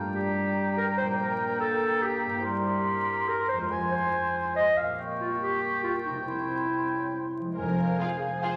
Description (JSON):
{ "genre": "cinematic, playful, whimsical film cue", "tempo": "142 BPM", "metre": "3/4", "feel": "straight", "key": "F minor", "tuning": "A4 = 440 Hz", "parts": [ { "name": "mellow cor anglais", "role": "second line", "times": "0.0-8.6 s", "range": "Bb4 to Ab5", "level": "-36 LUFS", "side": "equal", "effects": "none" }, { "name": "mellow hollow concert flute", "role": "second line", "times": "0.0-8.6 s", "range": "F5 to Db6", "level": "-35 LUFS", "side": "equal", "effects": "none" }, { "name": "dark French horn section", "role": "sustained chords", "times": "0.0-8.6 s", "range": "F3 to E4", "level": "-37 LUFS", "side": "equal", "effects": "none" }, { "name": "concert harp", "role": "arpeggios", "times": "0.0-8.6 s", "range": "F2 to D5", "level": "-38 LUFS", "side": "equal", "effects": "none" }, { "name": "warm clarinet", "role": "second line", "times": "0.1-8.6 s", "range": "Eb4 to F5", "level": "-32 LUFS", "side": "equal", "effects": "none" }, { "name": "clear studio viola section", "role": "accompaniment", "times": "7.6-8.6 s", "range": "Ab4 to C5", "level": "-40 LUFS", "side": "equal", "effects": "none" }, { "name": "rich studio cello section", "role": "bass", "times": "7.6-7.9 s", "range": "F2", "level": "-41 LUFS", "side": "equal", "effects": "none" }, { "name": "rich studio double bass section", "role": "bass", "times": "7.6-7.9 s", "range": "F1", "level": "-36 LUFS", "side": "equal", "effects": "none" }, { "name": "rich studio violin section", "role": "melody", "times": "8.0-8.5 s", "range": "F5", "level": "-42 LUFS", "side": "equal", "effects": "none" }, { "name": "clear studio violin section", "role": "second line", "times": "8.0-8.5 s", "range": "F4 to Ab4", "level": "-39 LUFS", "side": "equal", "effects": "none" } ], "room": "wet recital hall reverb, RT60 1.7 s", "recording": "vinyl crackle", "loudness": "-28 LUFS", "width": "mono", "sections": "0.0-7.6 A section", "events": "none", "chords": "0.0 Gm; 1.2 Gm/Bb; 2.4 C7/G; 3.7 Fm; 5.0 Gdim/Bb; 6.3 C; 7.6 Fm", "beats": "0.35 0.77 | 1.19 1.60 2.02 | 2.44 2.86 3.28 | 3.70 4.13 4.56 | 4.98 5.41 5.83 | 6.27 6.71 7.14 | 7.58 8.00 8.43" }